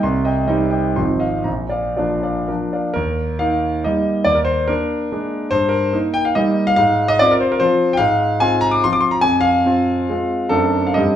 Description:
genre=classical, romantic triple-time dance for piano with dotted rhythms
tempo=112-159 BPM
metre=3/4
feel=rubato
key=Eb major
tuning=A4 = 444 Hz
part: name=clear concert grand piano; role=solo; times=0.0-11.2 s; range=Ab1 to D6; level=-15 LUFS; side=equal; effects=none
room=wet large studio reverb, RT60 0.8 s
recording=heard from further back in the room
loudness=-15 LUFS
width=side -10 dB against mid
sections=0.0-3.0 A section; 3.0-11.2 B section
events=none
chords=0.0 Cm; 1.0 Fm7/Ab; 1.5 Bb; 3.0 Eb; 4.3 Bb7/Eb; 5.5 Eb/G; 6.8 Fm/Ab; 9.2 Fm; 10.5 D7/F#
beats=| 0.04 0.49 0.97 | 1.46 1.98 2.49 | 2.97 3.42 3.86 | 4.27 4.70 5.13 | 5.53 5.94 6.37 | 6.79 7.21 7.62 | 8.00 8.41 8.84 | 9.24 9.68 10.12 | 10.54 10.98

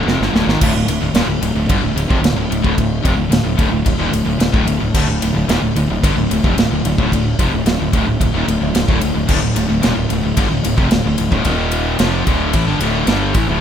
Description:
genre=heavy metal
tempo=111 BPM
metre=4/4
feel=straight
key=D minor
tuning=A4 = 440 Hz
part: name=distorted electric guitar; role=riff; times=0.0-13.6 s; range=D2 to G3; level=-22 LUFS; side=left 12 dB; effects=distortion
part: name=distorted electric guitar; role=riff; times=0.0-13.6 s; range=D2 to G3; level=-23 LUFS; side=right 8 dB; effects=overdrive
part: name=thick fuzz guitar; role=riff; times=0.0-13.6 s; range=D2 to G3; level=-20 LUFS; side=equal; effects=distortion
part: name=fuzz fingered electric bass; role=bass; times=0.0-13.6 s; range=D1 to A1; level=-21 LUFS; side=equal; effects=overdrive
part: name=modern studio drum kit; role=drums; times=0.1-13.5 s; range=crash cymbal, kick drum, ride cymbal, snare drum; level=-18 LUFS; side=equal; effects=none
room=small room ambience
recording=rough home demo mix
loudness=-14 LUFS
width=side -9 dB against mid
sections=0.6-13.6 A section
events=drum fill 0.0-0.6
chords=0.0 Dm; 11.5 Eb5; 12.0 Dm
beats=0.07 | 0.61 1.16 1.70 2.24 | 2.78 3.33 3.87 4.41 | 4.95 5.50 6.04 6.58 | 7.12 7.66 8.21 8.75 | 9.29 9.83 10.37 10.91 | 11.46 12.00 12.54 13.08

